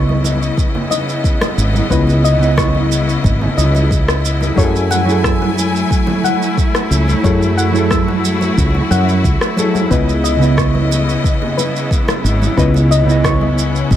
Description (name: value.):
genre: sunset chillout.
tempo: 90 BPM.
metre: 4/4.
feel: straight.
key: C# minor.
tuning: A4 = 440 Hz.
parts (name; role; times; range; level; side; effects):
hollow-body jazz guitar; accompaniment; 0.0-14.0 s; C#3 to D#5; -18 LUFS; moving between left 4 dB and right 5 dB; auto-pan, ping-pong delay.
bright studio string section; sustained chords; 0.0-14.0 s; C#3 to G#5; -20 LUFS; left 1 dB; none.
soft round pluck; arpeggios; 0.0-13.5 s; B4 to E6; -23 LUFS; left 5 dB; chorus, ping-pong delay.
woody fretless electric bass; bass; 0.0-14.0 s; G#1 to F#2; -16 LUFS; equal; none.
congas; percussion; 0.1-14.0 s; none; -25 LUFS; right 3 dB; none.
electronic shaker and rim click; drums; 0.3-14.0 s; none; -22 LUFS; right 1 dB; none.
electronic kick drum; drums; 0.6-14.0 s; none; -17 LUFS; equal; none.
room: light reverb.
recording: none.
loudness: -12 LUFS.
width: side -11 dB against mid.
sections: 0.0-14.0 A section.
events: none.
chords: 0.0 C#m9; 4.6 F#m9; 9.9 C#m9.